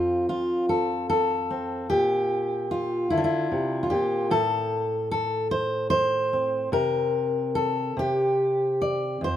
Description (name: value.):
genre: folk, solo fingerstyle acoustic guitar.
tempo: 50 BPM (dotted quarters).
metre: 6/8.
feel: rubato.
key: unclear.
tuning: A4 = 443 Hz.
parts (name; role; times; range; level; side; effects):
fingerpicked steel-string acoustic guitar; solo; 0.0-9.4 s; F2 to D5; -23 LUFS; left 1 dB; none.
room: light reverb.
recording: minimal, uncompressed stereo recording.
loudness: -23 LUFS.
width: side -11 dB against mid.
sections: 0.0-9.4 A section.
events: none.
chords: 0.0 F5; 1.9 Bb; 4.3 Am; 6.7 N.C..